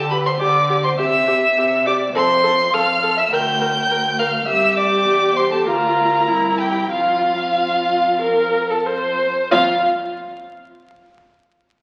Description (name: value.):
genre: quick classical-period movement for string quartet.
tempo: 91-104 BPM.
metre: 4/4.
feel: rubato.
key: F major.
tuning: A4 = 440 Hz.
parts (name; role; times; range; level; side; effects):
rich violin; melody; 0.0-9.9 s; F5 to G6; -21 LUFS; equal; none.
warm violin; second line; 0.0-9.9 s; F4 to G5; -25 LUFS; equal; none.
rich cello; bass; 0.0-9.9 s; C2 to D3; -30 LUFS; equal; none.
rich viola; accompaniment; 0.1-9.9 s; E4 to C5; -23 LUFS; equal; none.
room: wet scoring stage reverb, RT60 2.0 s.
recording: very old 78 rpm record, vinyl crackle.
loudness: -18 LUFS.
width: mono.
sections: 0.0-9.5 A section; 9.5-11.8 B section.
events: none.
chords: 0.0 G5/D; 1.0 C; 2.1 F; 3.3 Bb/D; 4.5 C; 5.7 Bb/D; 6.3 C7; 6.9 F5; 9.5 N.C..